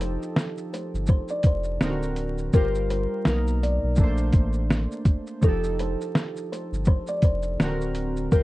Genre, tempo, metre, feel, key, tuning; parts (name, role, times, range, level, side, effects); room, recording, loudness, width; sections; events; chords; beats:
lo-fi hip hop; 83 BPM; 4/4; swing 58% on 16ths; A4 = 440 Hz
kalimba; melody; 0.0-8.4 s; A4 to D5; -30 LUFS; left 2 dB
warm analog keys; accompaniment; 0.0-8.4 s; B2 to C5; -30 LUFS; right 1 dB; chorus, cassette tape
warm sub bass; bass; 0.0-8.4 s; D1 to B1; -27 LUFS; equal
lo-fi sampler-style drum kit; drums; 0.0-8.4 s; hi-hat, kick drum, shaker, snare drum; -21 LUFS; equal
light reverb; dark, warm production, vinyl crackle, nothing above 10.5 kHz; -22 LUFS; side -18 dB against mid
0.0-8.4 A section
0.0 F9; 1.8 D7b13; 2.5 Gm7; 3.3 Bmaj7; 4.0 Bbmaj9; 5.4 F9; 7.6 D7b13
0.37 1.09 1.82 | 2.54 3.26 3.98 4.71 | 5.43 6.15 6.88 7.60 | 8.32